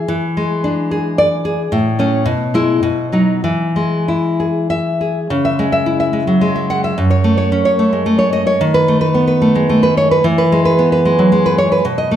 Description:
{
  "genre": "romantic piece for solo classical guitar",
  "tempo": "93-114 BPM",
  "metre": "3/4",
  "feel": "rubato",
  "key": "E major",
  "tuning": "A4 = 442 Hz",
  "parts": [
    { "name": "nylon-string guitar", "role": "solo", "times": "0.0-12.2 s", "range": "F#2 to F#5", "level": "-12 LUFS", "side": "equal", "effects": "none" }
  ],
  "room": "wet recital hall reverb, RT60 1.4 s",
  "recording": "recorded in a church or concert hall",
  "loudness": "-12 LUFS",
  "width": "side -10 dB against mid",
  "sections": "0.0-5.3 A section; 5.3-12.2 B section",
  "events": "none",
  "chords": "0.1 E7; 1.7 A; 2.3 E/B; 2.8 B; 3.4 E; 5.3 C#m; 7.0 F#m; 8.6 B7/D#; 10.2 E",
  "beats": "| 0.09 0.64 1.17 | 1.72 2.26 2.82 | 3.43 4.07 4.69 | 5.30 5.86 6.42 | 6.97 7.51 8.06 | 8.61 9.15 9.70 | 10.25 10.78 11.31 | 11.85"
}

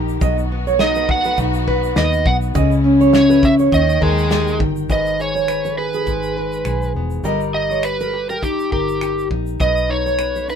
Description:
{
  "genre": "acoustic pop",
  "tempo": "102 BPM",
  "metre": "4/4",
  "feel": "swing 55% on 16ths",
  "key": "G# minor",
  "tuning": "A4 = 440 Hz",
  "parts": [
    { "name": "nylon-string guitar", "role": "accompaniment", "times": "0.0-10.6 s", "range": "G#2 to B4", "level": "-19 LUFS", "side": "left 2 dB", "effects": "none" },
    { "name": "warm studio string section", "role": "sustained chords", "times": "0.0-4.9 s", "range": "C#3 to G5", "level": "-29 LUFS", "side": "left 2 dB", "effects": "none" },
    { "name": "vintage muted fingered electric bass", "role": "bass", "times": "0.0-10.6 s", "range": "E1 to D#2", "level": "-22 LUFS", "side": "equal", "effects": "none" },
    { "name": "loose indie drum kit", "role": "drums", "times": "0.1-10.6 s", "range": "finger snaps, kick drum, shaker, snare drum", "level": "-22 LUFS", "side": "left 1 dB", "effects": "none" },
    { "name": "fingerpicked steel-string acoustic guitar", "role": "arpeggios", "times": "0.2-10.5 s", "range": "G4 to D#5", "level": "-23 LUFS", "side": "right 7 dB", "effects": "none" },
    { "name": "overdriven slide guitar", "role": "melody", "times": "0.8-10.6 s", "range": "G4 to F#5", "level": "-20 LUFS", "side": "right 2 dB", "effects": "none" }
  ],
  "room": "light reverb",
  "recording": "minimal, uncompressed stereo recording",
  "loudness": "-15 LUFS",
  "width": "side -7 dB against mid",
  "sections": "0.0-4.9 A section; 4.9-10.6 B section",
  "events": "none",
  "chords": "0.2 B; 2.6 C#m; 3.7 D#; 4.9 G#m; 7.3 D#/G; 9.6 B",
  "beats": "| 0.21 0.80 1.38 1.97 | 2.56 3.14 3.73 4.32 | 4.90 5.49 6.08 6.67 | 7.25 7.84 8.43 9.02 | 9.61 10.20"
}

